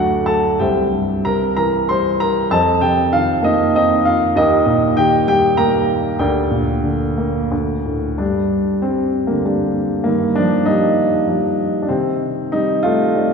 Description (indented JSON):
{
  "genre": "classical, lyrical solo piano",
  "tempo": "86-101 BPM",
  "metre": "3/4",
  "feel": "rubato",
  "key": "G minor",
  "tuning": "A4 = 441 Hz",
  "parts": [
    { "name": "dark baby grand piano", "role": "solo", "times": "0.0-13.3 s", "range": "C2 to C6", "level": "-14 LUFS", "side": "equal", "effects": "none" }
  ],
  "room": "wet church reverb, RT60 3.0 s",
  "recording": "recorded in a church or concert hall",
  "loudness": "-14 LUFS",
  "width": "side -5 dB against mid",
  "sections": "0.0-8.2 A section; 8.2-13.3 B section",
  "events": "none",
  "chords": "0.0 D; 0.6 C; 2.5 F7sus4; 4.4 Eb; 6.2 Gm/D; 7.5 D5; 8.2 Gm; 10.1 Ebadd9/G; 11.9 Cmadd9"
}